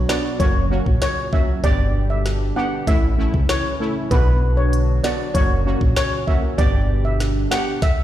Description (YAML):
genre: dancehall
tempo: 97 BPM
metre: 4/4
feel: straight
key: unclear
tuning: A4 = 439 Hz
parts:
  - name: hollow soft pad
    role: sustained chords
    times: 0.0-7.8 s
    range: A2 to G4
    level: -28 LUFS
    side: right 1 dB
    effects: chorus, sidechain pumping
  - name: solid FM bass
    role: bass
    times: 0.0-7.5 s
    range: F#1 to C#2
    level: -19 LUFS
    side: equal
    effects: none
  - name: steel pan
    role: melody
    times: 0.1-8.0 s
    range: B4 to F#5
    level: -25 LUFS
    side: equal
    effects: ping-pong delay
  - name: synth brass stab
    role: accompaniment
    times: 0.1-7.8 s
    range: A3 to G4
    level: -26 LUFS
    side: equal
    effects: chorus
  - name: island pop drum kit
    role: drums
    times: 0.1-8.0 s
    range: hi-hat, kick drum, snare drum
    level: -20 LUFS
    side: equal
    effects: none
room: little or no reverb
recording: played on a big sound system in a bare room, large studio reverb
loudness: -17 LUFS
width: side -12 dB against mid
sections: 0.0-8.0 A section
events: none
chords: 0.4 F#; 1.6 G; 2.9 A; 4.1 Bm; 5.3 F#; 6.6 G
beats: 0.40 1.02 | 1.64 2.25 2.87 3.49 | 4.11 4.73 5.35 5.97 | 6.58 7.20 7.82